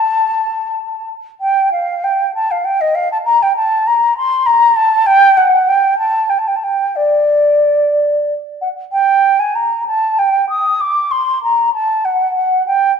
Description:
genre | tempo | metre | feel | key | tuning
classical, baroque-style fantasia for unaccompanied flute | 60-67 BPM (dotted quarters) | 6/8 | rubato | G minor | A4 = 442 Hz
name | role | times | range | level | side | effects
mellow concert flute | solo | 0.0-12.9 s | D5 to Eb6 | -12 LUFS | equal | none
room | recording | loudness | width
wet recital hall reverb, RT60 1.5 s | dark, warm production | -12 LUFS | side -6 dB against mid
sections
0.0-8.9 A section; 8.9-13.0 B section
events
none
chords
none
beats
0.46 | 1.41 2.34 | 3.26 4.16 | 5.06 5.99 | 6.96 7.94 | 8.93 9.87 | 10.80 11.74 | 12.65

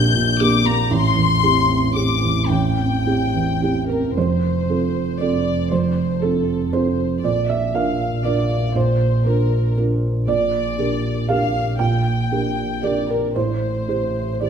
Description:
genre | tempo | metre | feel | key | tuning
neoclassical piano and strings | 117 BPM | 3/4 | rubato | F major | A4 = 440 Hz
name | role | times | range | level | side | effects
warm chamber violin section | melody | 0.0-14.5 s | A4 to G6 | -24 LUFS | left 5 dB | none
felt-muted upright piano | accompaniment | 0.0-14.5 s | A1 to G5 | -19 LUFS | right 4 dB | none
dark double bass | bass | 0.0-14.5 s | F1 to Bb1 | -24 LUFS | left 1 dB | none
room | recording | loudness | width
moderate concert hall reverb, RT60 1.9 s | minimal, uncompressed stereo recording | -17 LUFS | side -7 dB against mid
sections
0.0-4.2 A section; 4.2-14.5 B section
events
none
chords
0.0 Gm/Bb; 0.9 Am7; 4.2 F; 7.2 Bb; 10.3 Gm/Bb; 13.3 Am7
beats
0.40 | 0.91 1.43 1.95 | 2.50 3.06 3.61 | 4.16 4.68 5.19 | 5.70 6.21 6.72 | 7.22 7.73 8.24 | 8.75 9.26 9.76 | 10.27 10.78 11.29 | 11.80 12.31 12.83 | 13.34 13.87 14.40

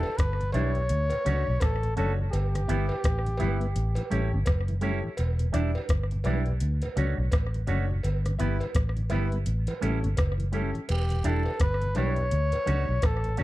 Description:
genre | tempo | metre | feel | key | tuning
roots reggae | 84 BPM | 4/4 | swing 60% on 16ths | E dorian | A4 = 440 Hz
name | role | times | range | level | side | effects
warm flugelhorn | melody | 0.0-4.4, 10.9-13.4 s | G4 to C#5 | -32 LUFS | left 1 dB | tape echo
mellow tonewheel organ | accompaniment | 0.0-13.4 s | D2 to D4 | -34 LUFS | left 1 dB | slow rotary speaker
warm baby grand piano | stabs | 0.0-13.4 s | C#4 to D5 | -36 LUFS | left 4 dB | none
vintage muted fingered electric bass | bass | 0.0-13.4 s | E1 to D2 | -27 LUFS | equal | none
cowbell and jawbone-type rattle | percussion | 0.0-13.2 s | none | -40 LUFS | right 4 dB | none
soft vintage rhythm box | drums | 0.2-13.4 s | hi-hat, kick drum, rim click | -27 LUFS | equal | slapback echo
electric guitar with an envelope filter | accompaniment | 0.5-13.4 s | G3 to F#4 | -36 LUFS | right 8 dB | tape echo
room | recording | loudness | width
little or no reverb | dry, close 1970s-style studio recording | -24 LUFS | side -16 dB against mid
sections
0.0-13.4 A section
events
none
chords
0.0 Em7; 0.9 Dmaj7; 2.3 G6; 3.8 A7; 5.2 Em7; 6.6 Dmaj7; 8.0 G6; 9.5 A7; 10.9 Em7; 12.3 Dmaj7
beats
0.18 0.90 1.61 | 2.33 3.04 3.75 4.47 | 5.18 5.89 6.61 7.32 | 8.04 8.75 9.46 10.17 | 10.89 11.60 12.31 13.02

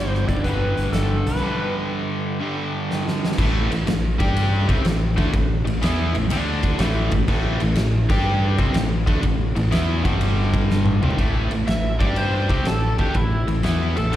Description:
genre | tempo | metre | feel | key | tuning
blues rock power trio and southern rock | 123 BPM | 4/4 | swing 67% on 8ths | A minor | A4 = 440 Hz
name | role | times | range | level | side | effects
overdriven slide guitar | melody | 0.0-1.7, 11.7-14.2 s | E4 to E5 | -27 LUFS | equal | slapback echo, tape echo
cranked stack guitar | riff | 0.0-14.2 s | G2 to G4 | -23 LUFS | equal | overdrive, slapback echo
fuzz fingered electric bass | bass | 0.0-14.1 s | G1 to G2 | -22 LUFS | equal | overdrive
oversized low-tuned drum kit | drums | 0.1-14.2 s | crash cymbal, hi-hat, kick drum, ride cymbal, snare drum, toms | -24 LUFS | equal | none
room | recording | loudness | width
small room ambience | live gig heard through the venue's PA, recital hall reverb | -18 LUFS | side -13 dB against mid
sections
0.0-3.4 A section; 3.4-11.2 B section; 11.2-14.2 C section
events
break 1.4-3.4; drum fill 2.9-3.4, 10.7-11.2; electric slide guitar solo 11.2-14.2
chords
0.0 G; 3.4 A5; 4.1 G5; 4.6 Am; 6.3 D5; 6.8 A5; 8.0 G5; 8.5 Am; 10.0 G5; 10.9 C5; 11.2 A5; 11.9 G5; 12.4 Am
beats
0.45 0.94 | 1.43 1.92 2.40 2.89 | 3.38 3.87 4.36 4.85 | 5.33 5.82 6.31 6.80 | 7.28 7.77 8.26 8.75 | 9.23 9.72 10.21 10.70 | 11.19 11.68 12.17 12.66 | 13.15 13.64 14.13

